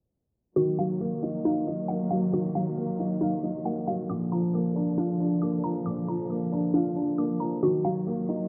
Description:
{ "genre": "hip hop", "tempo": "136 BPM", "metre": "4/4", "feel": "half-time", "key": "Eb harmonic minor", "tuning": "A4 = 440 Hz", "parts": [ { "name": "warm grand piano", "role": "accompaniment", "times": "0.6-8.5 s", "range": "Bb2 to F5", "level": "-31 LUFS", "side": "equal", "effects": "none" }, { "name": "rich studio string section", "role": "sustained chords", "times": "0.6-8.5 s", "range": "D3 to Bb3", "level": "-33 LUFS", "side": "equal", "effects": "none" }, { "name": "hollow square pluck", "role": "arpeggios", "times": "0.6-8.5 s", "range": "D4 to D6", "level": "-33 LUFS", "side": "equal", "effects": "chorus, digital delay" } ], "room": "moderate echo chamber reverb, RT60 1.4 s", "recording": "low-pass filter", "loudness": "-28 LUFS", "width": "mono", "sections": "0.6-8.5 A section", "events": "filter sweep 0.6-8.5", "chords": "0.6 Ebmadd9; 4.1 Bb; 7.6 Ebmadd9" }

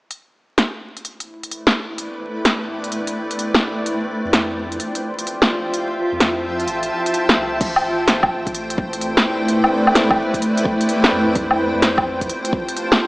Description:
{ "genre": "future garage", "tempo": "128 BPM", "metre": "4/4", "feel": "swing 66% on 16ths", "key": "A minor", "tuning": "A4 = 438 Hz", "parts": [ { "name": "granular cloud pad", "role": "sustained chords", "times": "1.4-13.1 s", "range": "A3 to A5", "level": "-20 LUFS", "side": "equal", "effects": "built-in reverb, sidechain pumping" }, { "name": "deep house drum kit", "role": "drums", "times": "0.1-13.0 s", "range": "crash cymbal, hi-hat, snare drum, woodblock", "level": "-17 LUFS", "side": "equal", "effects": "studio reverb" }, { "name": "soft dub sub bass", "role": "bass", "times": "4.2-12.3 s", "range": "E1 to F2", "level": "-35 LUFS", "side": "equal", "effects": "none" }, { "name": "electronic kick drum", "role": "drums", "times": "7.6-12.7 s", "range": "none", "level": "-24 LUFS", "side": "equal", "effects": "studio reverb" } ], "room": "moderate lush hall reverb, RT60 1.9 s", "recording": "vinyl crackle, small speaker sound", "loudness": "-16 LUFS", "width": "side -21 dB against mid", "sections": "0.1-7.6 A section; 7.6-13.1 B section", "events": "fade-in on ambient pad 0.1-7.6", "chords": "0.1 Am11; 3.9 Fmaj7; 7.6 Am11; 11.4 Fmaj7" }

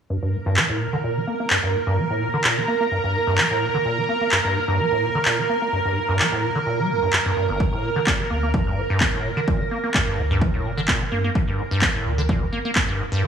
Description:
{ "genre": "acid house", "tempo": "128 BPM", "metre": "4/4", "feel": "swing 53% on 16ths", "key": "G minor", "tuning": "A4 = 440 Hz", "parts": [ { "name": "string machine, full ensemble", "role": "sustained chords", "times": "0.3-13.2 s", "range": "Bb4", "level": "-24 LUFS", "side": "right 3 dB", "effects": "ensemble chorus, sidechain pumping" }, { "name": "acid bass, square", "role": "riff", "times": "0.1-13.3 s", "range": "G1 to Bb3", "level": "-24 LUFS", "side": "equal", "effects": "tube saturation, wide subtle chorus, sidechain pumping, analog delay" }, { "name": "electronic handclaps", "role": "drums", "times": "0.6-12.9 s", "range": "none", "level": "-22 LUFS", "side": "equal", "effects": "none" }, { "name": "warm sub bass", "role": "bass", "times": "7.6-13.1 s", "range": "F1 to G2", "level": "-26 LUFS", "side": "equal", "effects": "tube saturation, sidechain pumping" }, { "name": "electronic kick drum", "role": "drums", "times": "7.6-12.9 s", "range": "none", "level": "-23 LUFS", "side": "equal", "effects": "none" } ], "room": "moderate lush hall reverb, RT60 1.7 s", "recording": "dry, gritty hardware recording, transformer saturation, studio ambience", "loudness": "-19 LUFS", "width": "side -7 dB against mid", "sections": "0.1-13.3 A section", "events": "filter sweep on acid bass 0.1-13.3", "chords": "0.1 Gm" }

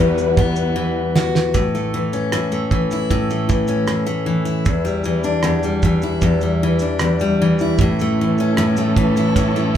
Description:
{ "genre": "acoustic pop", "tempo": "77 BPM", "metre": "4/4", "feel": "straight", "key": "unclear", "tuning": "A4 = 440 Hz", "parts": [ { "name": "picked steel-string acoustic guitar", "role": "accompaniment", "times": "0.0-9.8 s", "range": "E2 to F#4", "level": "-16 LUFS", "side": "left 1 dB", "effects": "none" }, { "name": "warm studio string section", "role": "sustained chords", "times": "0.0-1.5, 7.8-9.8 s", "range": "G3 to B4", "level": "-26 LUFS", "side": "right 3 dB", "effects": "none" }, { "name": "cloth-damped thuddy drum kit", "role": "drums", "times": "0.2-9.7 s", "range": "kick drum, rim click, shaker, snare drum", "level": "-20 LUFS", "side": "right 3 dB", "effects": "none" } ], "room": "moderate large studio reverb, RT60 1.1 s", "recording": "band playing live in one room", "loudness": "-16 LUFS", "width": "side -10 dB against mid", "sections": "0.0-1.5 A section; 1.5-9.8 B section", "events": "drum fill 0.8-1.5", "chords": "0.0 Emadd9; 1.5 A; 4.7 Em7; 7.8 A" }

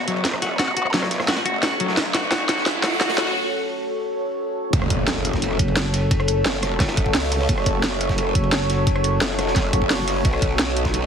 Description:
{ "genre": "dark technical drum and bass", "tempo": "174 BPM", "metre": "4/4", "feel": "straight", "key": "F# phrygian", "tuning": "A4 = 440 Hz", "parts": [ { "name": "deep dark ambient pad", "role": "sustained chords", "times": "0.0-11.1 s", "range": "B3 to D5", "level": "-26 LUFS", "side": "equal", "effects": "chorus, built-in reverb, sidechain pumping" }, { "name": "growl bass", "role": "bass", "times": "0.0-11.1 s", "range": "F#1 to C#2", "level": "-26 LUFS", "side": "equal", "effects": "chorus, tube saturation, high-pass filter" }, { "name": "riser and impact", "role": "sound effects", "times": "0.6-6.1 s", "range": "none", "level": "-29 LUFS", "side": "equal", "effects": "none" }, { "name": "clean electric guitar", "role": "arpeggios", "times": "0.1-3.3 s", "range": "F#3 to F#4", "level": "-24 LUFS", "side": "left 2 dB", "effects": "sidechain pumping, tape echo" }, { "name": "crunchy breakbeat drum kit", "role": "drums", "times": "0.1-11.0 s", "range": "hi-hat, ride cymbal, snare drum", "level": "-32 LUFS", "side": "equal", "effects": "high-pass filter on cymbals, high-pass filter on hats, high-pass filter on snare, high-pass filter on room" }, { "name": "drum and bass drum kit", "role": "drums", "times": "0.1-11.0 s", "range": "hi-hat, rim click, snare drum", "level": "-23 LUFS", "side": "right 1 dB", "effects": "none" }, { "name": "electronic kick drum", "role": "drums", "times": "4.7-10.9 s", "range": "none", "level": "-22 LUFS", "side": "equal", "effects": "overdrive" }, { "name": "growling FM bass", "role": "bass", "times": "5.6-9.2 s", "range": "F#1", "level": "-22 LUFS", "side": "equal", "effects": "none" } ], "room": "moderate digital room reverb, RT60 1.1 s, small room ambience", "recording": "heavily compressed radio sound, multiband compression, high-pass filter", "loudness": "-18 LUFS", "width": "side -7 dB against mid", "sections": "0.0-4.7 A section; 4.7-11.1 B section", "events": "build-up 0.0-4.7; drum fill 0.0-3.4; filter sweep on ambient pad 0.0-4.7; filter sweep 0.0-4.7; riser 0.6-3.4; break 3.4-4.7; drop 4.7-11.1; impact 4.7-6.1", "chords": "0.0 F#m; 10.2 Bm" }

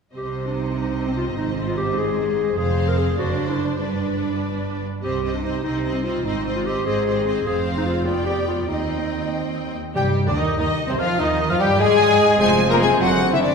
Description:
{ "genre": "classical, dramatic, fast romantic movement for symphony orchestra", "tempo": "98 BPM (dotted quarters)", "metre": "6/8", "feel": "straight", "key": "C minor", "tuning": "A4 = 440 Hz", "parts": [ { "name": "clear symphonic violin section", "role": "melody", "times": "0.1-13.5 s", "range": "C5 to Bb5", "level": "-29 LUFS", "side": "left 3 dB", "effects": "none" }, { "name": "warm symphonic violin section", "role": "second line", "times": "0.1-13.5 s", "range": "C4 to Eb5", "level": "-29 LUFS", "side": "left 2 dB", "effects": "none" }, { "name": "rich symphonic viola section", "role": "accompaniment", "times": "0.1-13.5 s", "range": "D3 to Ab4", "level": "-28 LUFS", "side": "right 2 dB", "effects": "none" }, { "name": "warm clarinet", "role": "second line", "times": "0.2-13.5 s", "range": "C4 to Bb4", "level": "-25 LUFS", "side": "left 2 dB", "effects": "none" }, { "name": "rich symphonic cello section", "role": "bass", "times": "0.2-13.5 s", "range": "Eb2 to Bb3", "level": "-27 LUFS", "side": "right 2 dB", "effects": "none" }, { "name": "warm symphonic double bass section", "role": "bass", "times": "0.2-13.5 s", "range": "F1 to Ab2", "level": "-28 LUFS", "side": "right 3 dB", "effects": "none" }, { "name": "large flute ensemble", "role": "second line", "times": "10.0-13.5 s", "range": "C5 to Bb5", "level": "-26 LUFS", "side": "left 5 dB", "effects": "none" }, { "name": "mellow cor anglais", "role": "second line", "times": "10.0-13.5 s", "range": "C5 to Ab5", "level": "-26 LUFS", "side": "right 1 dB", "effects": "none" }, { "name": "mellow bassoon", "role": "accompaniment", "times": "10.0-13.5 s", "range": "C3 to Ab3", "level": "-25 LUFS", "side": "right 2 dB", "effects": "none" }, { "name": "mellow French horn section", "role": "sustained chords", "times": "10.0-13.5 s", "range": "C3 to F4", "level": "-25 LUFS", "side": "left 4 dB", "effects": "none" }, { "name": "timpani", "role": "percussion", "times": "10.0-10.5 s", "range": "C3", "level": "-29 LUFS", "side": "left 2 dB", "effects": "none" } ], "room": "wet church reverb, RT60 2.7 s", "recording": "recorded in a church or concert hall", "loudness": "-18 LUFS", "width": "side -5 dB against mid", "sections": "0.2-10.0 A section; 10.0-13.5 A section", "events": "none", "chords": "0.2 Cm; 1.4 Ab; 2.6 Fm; 3.2 D7/F#; 3.8 G; 5.0 Cm; 6.3 Ab; 7.5 Fm; 8.1 G7/F; 8.7 Cm/Eb; 10.0 Cm; 11.2 Ab5/Eb; 12.4 Fm; 13.0 D7/F#" }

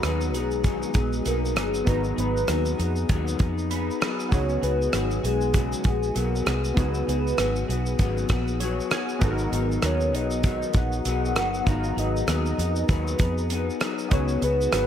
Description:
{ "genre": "indie pop, bedroom pop", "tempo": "98 BPM", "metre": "4/4", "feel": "swing 60% on 16ths", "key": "G# minor", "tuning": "A4 = 439 Hz", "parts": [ { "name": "warm velvety synth lead", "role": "melody", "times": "0.0-14.9 s", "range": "G#4 to F#5", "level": "-29 LUFS", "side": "equal", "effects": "tremolo, wide subtle chorus, analog delay" }, { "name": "electric guitar through a small old amp", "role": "accompaniment", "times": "0.0-14.9 s", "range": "G#2 to G#4", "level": "-30 LUFS", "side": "left 6 dB", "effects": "analog chorus, vibrato effect" }, { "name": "warm analog keys", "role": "accompaniment", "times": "0.0-14.9 s", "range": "B3 to B5", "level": "-32 LUFS", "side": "right 3 dB", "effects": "chorus" }, { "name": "vintage muted fingered electric bass", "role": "bass", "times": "0.0-14.9 s", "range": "G1 to E#2", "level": "-27 LUFS", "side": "equal", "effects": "none" }, { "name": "damped 70s drum kit", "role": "drums", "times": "0.0-14.9 s", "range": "hi-hat, kick drum, rim click, shaker", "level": "-26 LUFS", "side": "equal", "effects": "none" } ], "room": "light reverb, small room ambience", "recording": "none", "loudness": "-22 LUFS", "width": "side -9 dB against mid", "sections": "0.0-14.9 A section", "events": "synth keys fill 3.4-4.3, 8.3-9.2", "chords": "0.0 G#m7; 4.3 C#7sus4; 9.2 G#m7; 14.1 C#7sus4" }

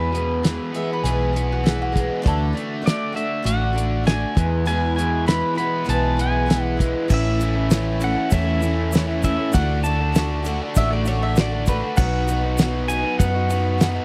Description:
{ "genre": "folk rock and heartland rock", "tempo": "99 BPM", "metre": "4/4", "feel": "straight", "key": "A major", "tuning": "A4 = 440 Hz", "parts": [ { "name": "pedal steel guitar", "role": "melody", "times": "0.0-14.0 s", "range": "B4 to B5", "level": "-28 LUFS", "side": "equal", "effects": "slapback echo" }, { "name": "picked twelve-string acoustic guitar", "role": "accompaniment", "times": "0.0-14.0 s", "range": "E2 to G#4", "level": "-28 LUFS", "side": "equal", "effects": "none" }, { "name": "biting overdriven guitar", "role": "riff", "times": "0.0-14.0 s", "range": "E2 to G#4", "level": "-30 LUFS", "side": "equal", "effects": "none" }, { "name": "hollow-body short-scale fingered electric bass", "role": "bass", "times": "0.0-14.0 s", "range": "A1 to F#2", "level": "-25 LUFS", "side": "equal", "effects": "none" }, { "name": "damped 70s drum kit", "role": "drums", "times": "0.1-13.9 s", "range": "crash cymbal, hi-hat, kick drum, ride cymbal, snare drum", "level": "-23 LUFS", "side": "equal", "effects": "none" }, { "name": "mandolin", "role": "second line", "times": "0.8-2.6, 10.8-12.0 s", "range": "E4 to E5", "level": "-30 LUFS", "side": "equal", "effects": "none" }, { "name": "hand-pumped harmonium", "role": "sustained chords", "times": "2.2-14.0 s", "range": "G#3 to B5", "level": "-37 LUFS", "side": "equal", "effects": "none" }, { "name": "egg shaker", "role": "percussion", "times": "7.1-13.9 s", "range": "none", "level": "-39 LUFS", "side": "equal", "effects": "none" } ], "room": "small room ambience", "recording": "dry, close 1970s-style studio recording", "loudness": "-21 LUFS", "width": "mono", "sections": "0.0-7.1 A section; 7.1-14.0 B section", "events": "none", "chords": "0.0 E; 2.2 D; 4.4 E; 7.1 A; 9.5 D; 12.0 B" }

